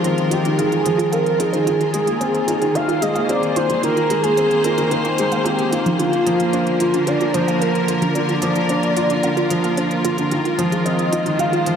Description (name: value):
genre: piano and strings electronica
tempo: 111 BPM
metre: 4/4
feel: straight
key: unclear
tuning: A4 = 440 Hz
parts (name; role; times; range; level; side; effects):
- warm velvety synth lead; melody; 0.0-11.8 s; F4 to F5; -20 LUFS; equal; chorus
- clear studio string section; sustained chords; 0.0-11.8 s; D3 to C5; -23 LUFS; left 1 dB; none
- warbly dusty pluck; arpeggios; 0.0-11.6 s; F3 to F5; -26 LUFS; right 3 dB; chorus, analog delay
- felt-muted upright piano; riff; 0.0-11.8 s; D3 to F4; -21 LUFS; equal; analog delay
- electronic hi-hat; drums; 0.0-11.8 s; none; -31 LUFS; right 2 dB; none
room: wet lush hall reverb, RT60 1.9 s, studio reverb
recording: dreamy mix soaked in reverb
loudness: -16 LUFS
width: side -7 dB against mid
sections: 0.0-11.8 A section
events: none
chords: 0.0 Fm7; 6.0 Bb; 10.3 Fm7